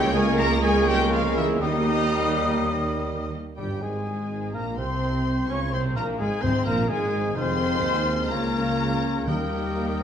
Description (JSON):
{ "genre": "classical", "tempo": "125 BPM", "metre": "4/4", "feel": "straight", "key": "Ab major", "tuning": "A4 = 436 Hz", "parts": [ { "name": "warm symphonic violin section", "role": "melody", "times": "0.0-10.0 s", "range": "Eb5 to Db6", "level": "-32 LUFS", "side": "left 5 dB", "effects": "none" }, { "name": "dark clarinet", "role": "second line", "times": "0.0-10.0 s", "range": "Db4 to Db5", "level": "-36 LUFS", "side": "left 1 dB", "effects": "none" }, { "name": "silver concert flute", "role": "second line", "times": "0.0-10.0 s", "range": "G5 to F6", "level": "-33 LUFS", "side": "left 4 dB", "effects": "none" }, { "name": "warm symphonic violin section", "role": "second line", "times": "0.0-10.0 s", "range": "G3 to Db5", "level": "-36 LUFS", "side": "left 3 dB", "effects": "none" }, { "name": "rich symphonic viola section", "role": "accompaniment", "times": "0.0-10.0 s", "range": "Db3 to Ab4", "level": "-32 LUFS", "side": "right 2 dB", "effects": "none" }, { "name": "warm bassoon", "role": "accompaniment", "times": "0.0-10.0 s", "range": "G3 to Db4", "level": "-33 LUFS", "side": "right 1 dB", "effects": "none" }, { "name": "mellow French horn section", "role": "sustained chords", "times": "0.0-10.0 s", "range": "G3 to Bb4", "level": "-31 LUFS", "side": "left 5 dB", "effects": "none" }, { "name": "dark trumpet section", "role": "stabs", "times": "0.0-10.0 s", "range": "Eb4 to Db5", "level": "-32 LUFS", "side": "equal", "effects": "none" }, { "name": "mellow tuba", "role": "bass", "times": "0.0-10.0 s", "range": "F1 to Eb2", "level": "-32 LUFS", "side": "right 3 dB", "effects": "none" }, { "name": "warm symphonic cello section", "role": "bass", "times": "0.0-10.0 s", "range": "Db2 to Bb3", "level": "-32 LUFS", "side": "right 2 dB", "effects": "none" }, { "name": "warm symphonic double bass section", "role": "bass", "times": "0.0-10.0 s", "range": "F1 to Eb2", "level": "-31 LUFS", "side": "right 2 dB", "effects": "none" }, { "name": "clear oboe", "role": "second line", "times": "0.1-10.0 s", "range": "G4 to Bb5", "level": "-34 LUFS", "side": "equal", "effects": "none" }, { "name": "warm trombone section", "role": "sustained chords", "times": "0.1-10.0 s", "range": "G2 to Bb3", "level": "-34 LUFS", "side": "right 4 dB", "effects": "none" }, { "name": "timpani", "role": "percussion", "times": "3.6-10.0 s", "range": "Ab2 to Eb3", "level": "-32 LUFS", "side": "left 2 dB", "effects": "none" } ], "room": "wet recital hall reverb, RT60 1.4 s", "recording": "dark, warm production", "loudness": "-22 LUFS", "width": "side -8 dB against mid", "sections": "0.0-3.6 A section; 3.6-10.0 B section", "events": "none", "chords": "0.0 Bbm7b5/Db; 1.6 Eb; 3.6 Ab; 5.5 Db5; 6.4 Ab; 7.4 Fm7; 8.3 Bbm/Db; 9.3 Eb" }